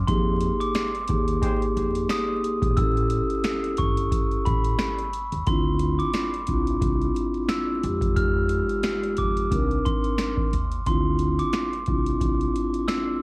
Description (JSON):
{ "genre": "hip hop, boom-bap hip-hop", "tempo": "89 BPM", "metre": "4/4", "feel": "swing 56% on 16ths", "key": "unclear", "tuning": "A4 = 440 Hz", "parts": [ { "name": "upright bass", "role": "bass", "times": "0.0-12.5 s", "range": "G1 to F2", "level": "-28 LUFS", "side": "equal", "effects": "none" }, { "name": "glockenspiel with hard plastic mallets", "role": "melody", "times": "0.1-13.2 s", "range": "B5 to F6", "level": "-29 LUFS", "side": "right 1 dB", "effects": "high-pass filter, low-pass filter, cassette tape" }, { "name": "vibraphone with soft mallets", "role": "accompaniment", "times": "0.1-13.2 s", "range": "Ab3 to Bb4", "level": "-26 LUFS", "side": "equal", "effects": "cassette tape, high-pass filter, low-pass filter" }, { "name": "booming analog drum machine", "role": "drums", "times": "0.1-13.1 s", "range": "hi-hat, kick drum, snare drum", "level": "-26 LUFS", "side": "equal", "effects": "cassette tape" }, { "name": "mellow horn section", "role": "stabs", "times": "1.4-1.6 s", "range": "Ab3 to C5", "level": "-37 LUFS", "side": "right 1 dB", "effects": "high-pass filter, low-pass filter, cassette tape, analog delay" } ], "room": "little or no reverb", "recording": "home recording on cassette, vinyl crackle", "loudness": "-21 LUFS", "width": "side -25 dB against mid", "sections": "0.0-5.5 A section; 5.5-13.2 B section", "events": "none", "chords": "0.1 Fm11; 2.8 A7; 5.5 Dm9; 7.8 Fm9; 9.5 Cm9; 10.9 Dm9" }